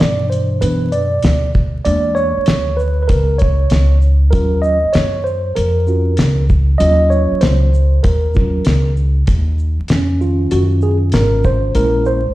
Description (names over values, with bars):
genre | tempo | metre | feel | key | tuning
hip hop, jazz-hop | 97 BPM | 4/4 | swing 66% on 16ths | unclear | A4 = 440 Hz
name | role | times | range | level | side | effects
mellow tine electric piano | accompaniment | 0.0-12.3 s | B2 to Eb5 | -17 LUFS | right 1 dB | medium stereo tremolo
upright bass | bass | 0.0-12.3 s | Ab1 to G2 | -15 LUFS | equal | none
cloth-damped thuddy drum kit | drums | 0.0-12.2 s | hi-hat, kick drum, shaker, snare drum | -16 LUFS | equal | vintage 12-bit sampler grit
room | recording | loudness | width
light reverb | played on a big sound system in a bare room, stone room reverb, vinyl crackle | -12 LUFS | side -16 dB against mid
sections
0.0-9.3 A section; 9.3-12.3 B section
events
tine electric piano solo 0.0-9.3, 9.3-12.3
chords
0.0 Cmaj7; 1.9 E7#11; 4.3 Ebm7; 11.8 Bbm7b5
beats
0.00 0.62 1.24 | 1.85 2.47 3.09 3.71 | 4.33 4.95 5.57 6.18 | 6.80 7.42 8.04 8.66 | 9.28 9.89 10.51 11.13 | 11.75